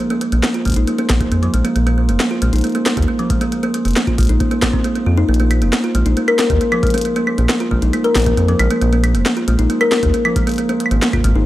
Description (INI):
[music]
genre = IDM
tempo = 136 BPM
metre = 4/4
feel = straight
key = unclear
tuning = A4 = 440 Hz
[part]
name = kalimba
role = arpeggios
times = 0.0-11.5 s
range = F3 to Bb4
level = -17 LUFS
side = equal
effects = analog delay
[part]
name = glitchy drum kit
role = drums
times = 0.1-11.3 s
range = claves, hi-hat, snare drum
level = -21 LUFS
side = equal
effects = small room ambience, tape echo
[part]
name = round analog bass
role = bass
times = 0.3-11.4 s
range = F1 to F2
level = -15 LUFS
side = equal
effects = none
[part]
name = electronic kick drum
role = drums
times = 0.7-11.3 s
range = none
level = -20 LUFS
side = equal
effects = small room ambience
[sound]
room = little or no reverb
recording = dry, gritty hardware recording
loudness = -13 LUFS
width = side -15 dB against mid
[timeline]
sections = 0.0-11.5 A section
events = none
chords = 0.0 N.C.; 1.8 Ebsus2; 5.3 Bb5; 7.1 N.C.; 8.8 Ebsus2; 10.6 N.C.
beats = 0.43 0.88 1.32 | 1.76 2.20 2.64 3.08 | 3.52 3.96 4.41 4.85 | 5.29 5.73 6.17 6.61 | 7.05 7.49 7.93 8.38 | 8.82 9.26 9.70 10.14 | 10.58 11.02